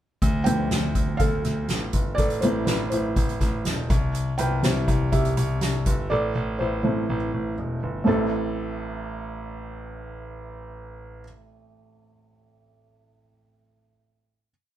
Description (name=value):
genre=piano-driven pop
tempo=122 BPM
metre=4/4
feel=straight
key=A minor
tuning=A4 = 440 Hz
part: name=clear concert grand piano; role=bass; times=0.2-11.2 s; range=E1 to D2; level=-27 LUFS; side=equal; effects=none
part: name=soft-mallet drum kit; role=drums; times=0.2-6.0 s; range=hi-hat, kick drum, snare drum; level=-25 LUFS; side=equal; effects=none
part: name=felt-muted upright piano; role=accompaniment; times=0.4-14.5 s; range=A1 to G5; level=-26 LUFS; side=right 1 dB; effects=none
room=moderate studio reverb, RT60 0.7 s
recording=band playing live in one room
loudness=-22 LUFS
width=side -12 dB against mid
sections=0.2-8.1 verse; 8.1-12.0 final chord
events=felt piano solo 0.2-8.1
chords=0.2 Dm; 2.2 Am; 3.9 C; 6.1 Am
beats=| 0.22 0.71 1.20 1.69 | 2.18 2.67 3.17 3.65 | 4.14 4.63 5.12 5.62 | 6.11 6.59 7.08 7.57 | 8.06 8.55 9.04 9.54 | 10.03 10.52 11.01 11.50